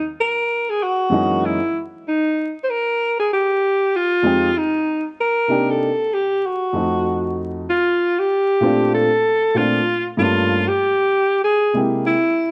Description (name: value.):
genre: hip hop.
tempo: 96 BPM.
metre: 4/4.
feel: swing 57% on 16ths.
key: C dorian.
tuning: A4 = 440 Hz.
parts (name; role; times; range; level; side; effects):
breathy alto saxophone; melody; 0.0-12.5 s; D#4 to C5; -20 LUFS; equal; none.
dark upright piano; accompaniment; 1.1-12.1 s; F2 to G4; -22 LUFS; equal; none.
room: moderate echo chamber reverb, RT60 1.7 s, small room ambience.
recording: worn, warbling old tape, cassette tape, vinyl crackle, warbly pitch drift, nothing above 10.3 kHz.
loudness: -19 LUFS.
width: mono.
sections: 0.0-12.5 A section.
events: none.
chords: 0.2 F#13; 2.7 Fm9; 5.2 Cm7; 6.4 F7b9; 7.7 Bbmaj9; 10.2 Gm7b5; 11.4 C7b13.